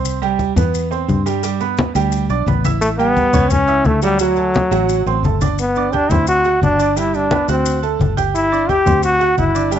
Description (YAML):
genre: latin, salsa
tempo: 174 BPM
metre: 4/4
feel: straight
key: G major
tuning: A4 = 439 Hz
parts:
  - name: bright upright piano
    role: accompaniment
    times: 0.0-9.8 s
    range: F#3 to G6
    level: -20 LUFS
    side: right 11 dB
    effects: none
  - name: fingered electric bass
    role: bass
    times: 0.0-9.8 s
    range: G1 to G2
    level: -20 LUFS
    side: left 1 dB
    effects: none
  - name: congas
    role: percussion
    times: 0.0-9.8 s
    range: none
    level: -20 LUFS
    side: left 2 dB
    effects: none
  - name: maracas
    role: percussion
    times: 0.1-9.8 s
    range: none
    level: -32 LUFS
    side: left 18 dB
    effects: none
  - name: bright trombone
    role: melody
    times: 2.8-9.8 s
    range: F#3 to G4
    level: -16 LUFS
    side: left 1 dB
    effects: none
room: moderate spring reverb, RT60 1.4 s, small room ambience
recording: 1960s-style stereo with parts hard left and right, nothing above 7.8 kHz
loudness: -14 LUFS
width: side -9 dB against mid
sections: 0.0-5.6 A section; 5.6-9.8 B section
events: none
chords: 0.1 Cmaj7; 1.4 G; 2.8 A7; 4.2 D7; 5.6 G; 6.3 D7; 7.0 G; 7.7 D; 8.3 G5; 9.0 D7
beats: | 0.06 0.40 0.75 1.09 | 1.44 1.78 2.13 2.47 | 2.82 3.16 3.51 3.85 | 4.20 4.54 4.89 5.24 | 5.58 5.93 6.27 6.62 | 6.96 7.31 7.65 8.00 | 8.35 8.69 9.04 9.38 | 9.73